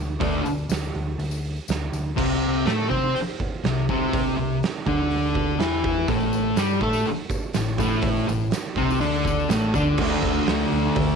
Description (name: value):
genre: garage rock duo or trio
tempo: 123 BPM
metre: 4/4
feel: straight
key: unclear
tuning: A4 = 440 Hz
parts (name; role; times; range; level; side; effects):
- hollow-body short-scale picked electric bass; bass; 0.0-11.1 s; A1 to C3; -28 LUFS; left 1 dB; none
- thick fuzz guitar; riff; 0.2-11.2 s; A2 to C5; -22 LUFS; left 1 dB; distortion
- oversized low-tuned drum kit; drums; 0.2-11.1 s; crash cymbal, hi-hat, kick drum, snare drum; -27 LUFS; right 3 dB; none
- tambourine; percussion; 0.2-2.0, 6.1-9.9 s; none; -42 LUFS; left 14 dB; none
room: light reverb, small room ambience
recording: 1960s-style stereo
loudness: -21 LUFS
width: side -6 dB against mid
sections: 0.0-2.2 A section; 2.2-10.0 B section; 10.0-11.2 C section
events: none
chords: 0.0 D5; 2.2 C69; 6.1 Amadd11; 10.0 D5